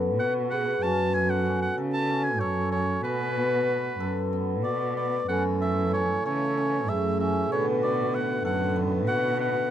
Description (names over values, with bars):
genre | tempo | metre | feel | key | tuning
contemporary instrumental, chamber music in an uneven meter | 190 BPM (eighths) | 7/8 | straight | B dorian | A4 = 443 Hz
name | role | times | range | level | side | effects
vibraphone with soft mallets | second line | 0.0-9.7 s | F#4 to B4 | -32 LUFS | right 4 dB | none
cimbalom | arpeggios | 0.0-9.7 s | A3 to A4 | -29 LUFS | left 5 dB | none
dark cello | bass | 0.0-9.7 s | F#2 to C#3 | -29 LUFS | right 3 dB | none
warm oboe | melody | 0.2-9.7 s | B4 to A5 | -30 LUFS | right 1 dB | none
hand-pumped harmonium | sustained chords | 5.3-9.7 s | A2 to B3 | -36 LUFS | left 1 dB | none
room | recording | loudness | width
light reverb | close, detailed microphones | -24 LUFS | side -10 dB against mid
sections
0.0-9.7 A section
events
none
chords
0.0 B5; 5.3 F#m7; 7.5 Bm7